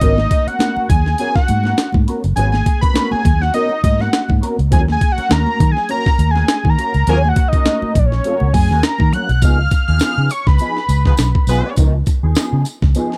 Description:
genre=funk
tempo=102 BPM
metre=4/4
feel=swing 56% on 16ths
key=G# dorian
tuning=A4 = 440 Hz
part: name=fat analog lead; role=melody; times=0.0-11.5 s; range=C#5 to F#6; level=-22 LUFS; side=equal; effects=none
part: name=mellow electric guitar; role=accompaniment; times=0.0-13.1 s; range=E#3 to C#5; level=-26 LUFS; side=equal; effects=wah, ensemble chorus
part: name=vintage muted fingered electric bass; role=bass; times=0.0-12.9 s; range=F#1 to D#3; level=-18 LUFS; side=equal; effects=none
part: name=breakbeat sampler-style drum kit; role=drums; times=0.0-13.2 s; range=hi-hat, kick drum, snare drum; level=-18 LUFS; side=equal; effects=none
part: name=congas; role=percussion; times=0.0-9.3 s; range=none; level=-27 LUFS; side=equal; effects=none
part: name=mellow horn section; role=second line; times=7.1-7.2, 11.1-11.7 s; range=F#3 to B4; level=-24 LUFS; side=equal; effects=none
part: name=tambourine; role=percussion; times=9.4-13.1 s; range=none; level=-36 LUFS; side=equal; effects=none
room=digital ambience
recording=dry, close 1970s-style studio recording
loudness=-15 LUFS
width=mono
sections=0.0-9.4 A section; 9.4-13.2 B section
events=analog synth lead solo 0.0-9.4; band accent 7.1-9.4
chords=0.0 G#m11; 4.7 D#m7; 9.4 C#9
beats=| 0.02 0.61 1.20 1.78 | 2.37 2.96 3.55 4.13 | 4.72 5.31 5.90 6.48 | 7.07 7.66 8.25 8.83 | 9.42 10.01 10.60 11.19 | 11.78 12.36 12.95

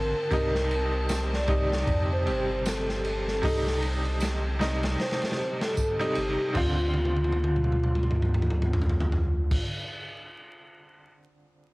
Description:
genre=trip hop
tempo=77 BPM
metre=4/4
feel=swing 59% on 16ths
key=D phrygian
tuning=A4 = 440 Hz
part: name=vibraphone with soft mallets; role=melody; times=0.0-9.6 s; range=F4 to D5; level=-31 LUFS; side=equal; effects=vintage 12-bit sampler grit, cassette tape, dub echo
part: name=bright upright piano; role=accompaniment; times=0.0-11.7 s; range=C3 to A4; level=-32 LUFS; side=right 1 dB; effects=tremolo, cassette tape
part: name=rich symphonic string section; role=sustained chords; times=0.0-6.6 s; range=C4 to A5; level=-39 LUFS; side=left 2 dB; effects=vintage 12-bit sampler grit, cassette tape
part: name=warm sub bass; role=bass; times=0.0-9.6 s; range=G1 to F2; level=-28 LUFS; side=equal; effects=none
part: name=crunchy breakbeat drum kit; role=drums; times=0.3-11.1 s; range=crash cymbal, hi-hat, kick drum, ride cymbal, snare drum, toms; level=-30 LUFS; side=equal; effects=cassette tape
part: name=tambourine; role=percussion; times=1.1-6.0 s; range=none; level=-41 LUFS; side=right 6 dB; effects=none
room=studio ambience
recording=home recording on cassette, vinyl crackle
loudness=-24 LUFS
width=side -22 dB against mid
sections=0.0-6.6 A section; 6.6-9.7 B section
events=drum fill 6.9-9.5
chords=0.3 Cm; 6.6 Dm7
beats=| 0.32 1.10 1.88 2.65 | 3.44 4.21 4.99 5.77 | 6.55 7.33 8.11 8.89

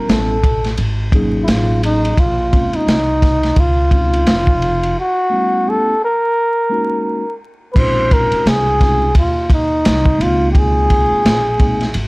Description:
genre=hip hop, jazz-hop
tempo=86 BPM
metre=4/4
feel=swing 61% on 16ths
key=Bb minor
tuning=A4 = 440 Hz
part: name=trumpet with bucket mute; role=melody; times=0.0-12.0 s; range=Eb4 to C5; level=-16 LUFS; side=equal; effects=none
part: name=mellow tine electric piano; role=accompaniment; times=0.0-11.9 s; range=Gb3 to Bb4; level=-21 LUFS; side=equal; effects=medium stereo tremolo
part: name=upright bass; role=bass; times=0.1-12.1 s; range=F1 to Eb2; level=-19 LUFS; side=equal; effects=none
part: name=crunchy breakbeat drum kit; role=drums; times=0.1-12.1 s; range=crash cymbal, hi-hat, kick drum, ride cymbal, snare drum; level=-16 LUFS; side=equal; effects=none
room=studio reverb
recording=dry, gritty hardware recording, vinyl crackle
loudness=-12 LUFS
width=side -26 dB against mid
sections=0.0-7.8 A section; 7.8-12.1 B section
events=break 5.0-7.8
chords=0.1 A9; 0.8 Ab9sus4; 2.2 Bbm9; 3.6 Dbmaj9; 5.0 Gb5; 6.4 Ab9sus4; 7.8 Bbm11; 10.2 Dbmaj13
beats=0.09 0.78 1.48 | 2.18 2.88 3.57 4.27 | 4.97 5.67 6.37 7.06 | 7.76 8.46 9.16 9.85 | 10.55 11.25 11.95

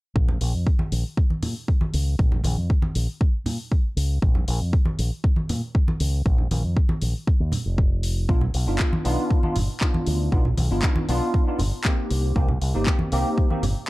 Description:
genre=nu-disco, nu disco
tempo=118 BPM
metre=4/4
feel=straight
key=unclear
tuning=A4 = 439 Hz
part: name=fingered electric bass with an envelope filter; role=bass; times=0.2-13.7 s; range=F1 to Bb2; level=-23 LUFS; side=equal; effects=none
part: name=electronic kick drum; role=drums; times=0.2-13.5 s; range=none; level=-20 LUFS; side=equal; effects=overdrive
part: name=congas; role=percussion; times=0.3-13.7 s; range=none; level=-28 LUFS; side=right 1 dB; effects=none
part: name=house drum kit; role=drums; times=0.4-13.7 s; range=handclaps, hi-hat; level=-32 LUFS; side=left 2 dB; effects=overdrive
part: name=tine electric piano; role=accompaniment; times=8.3-13.6 s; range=Bb3 to G4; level=-27 LUFS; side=equal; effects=ensemble chorus, tape echo
room=digital ambience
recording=dark, warm production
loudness=-20 LUFS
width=side -19 dB against mid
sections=0.2-13.9 A section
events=none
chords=0.2 Bbm; 8.3 G7b13; 12.1 Cm7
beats=| 0.16 0.67 1.17 1.68 | 2.19 2.70 3.21 3.72 | 4.22 4.73 5.24 5.75 | 6.26 6.77 7.28 7.79 | 8.29 8.80 9.31 9.82 | 10.33 10.84 11.34 11.85 | 12.36 12.87 13.38

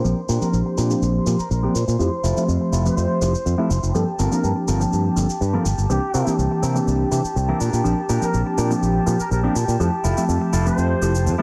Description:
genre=filtered disco house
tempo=123 BPM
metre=4/4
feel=straight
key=unclear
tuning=A4 = 440 Hz
part: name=bell-like tine electric piano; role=accompaniment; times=0.0-11.4 s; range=E3 to A5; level=-25 LUFS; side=equal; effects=phaser, low-pass filter
part: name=warm studio string section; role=sustained chords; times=0.0-11.4 s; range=G4 to C6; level=-31 LUFS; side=equal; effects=vintage 12-bit sampler grit, low-pass filter
part: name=clean electric guitar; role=riff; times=0.0-11.4 s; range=C4 to Bb4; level=-32 LUFS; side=equal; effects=spring reverb, low-pass filter
part: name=modern bright fingered electric bass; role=bass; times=0.0-11.3 s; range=F1 to C3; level=-23 LUFS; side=equal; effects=low-pass filter
part: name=shaker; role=drums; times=0.1-11.4 s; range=none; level=-35 LUFS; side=equal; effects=low-pass filter on hats, low-pass filter on perc, low-pass filter on room
part: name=brilliant trumpet section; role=melody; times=0.4-11.3 s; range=G4 to C5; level=-32 LUFS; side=equal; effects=low-pass filter, dub echo
room=light reverb, small room ambience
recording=dense, heavily limited modern master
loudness=-20 LUFS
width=mono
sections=0.0-11.4 A section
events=filter sweep 0.0-11.4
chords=0.0 Bb6; 2.0 Fmaj7; 3.9 Gm11; 5.9 C7; 7.6 Bb6; 9.8 Fmaj7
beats=| 0.04 0.53 1.02 1.51 | 2.00 2.48 2.97 3.46 | 3.95 4.43 4.92 5.41 | 5.90 6.39 6.87 7.36 | 7.85 8.34 8.82 9.31 | 9.80 10.29 10.78 11.26

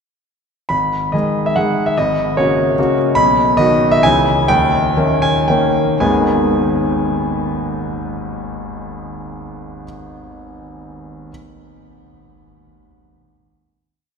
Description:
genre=classical, romantic triple-time dance for piano with dotted rhythms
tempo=107-156 BPM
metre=3/4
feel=rubato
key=G# minor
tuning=A4 = 436 Hz
part: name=clear concert grand piano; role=solo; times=0.7-11.3 s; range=G#1 to B5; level=-14 LUFS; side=equal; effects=none
room=wet cathedral reverb, RT60 6.5 s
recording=recorded in a church or concert hall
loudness=-13 LUFS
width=side -6 dB against mid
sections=0.7-6.0 A section; 6.0-9.2 final chord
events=slowing down 2.6-6.0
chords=0.7 G#m; 2.0 F#/G#; 3.2 B; 4.0 C#m; 4.5 D#7; 6.0 G#m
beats=| 0.70 1.14 1.56 | 1.97 2.38 2.78 | 3.17 3.58 4.04 | 4.48 4.96 5.47 | 6.00 6.52 7.07 | 7.60 8.15 8.69

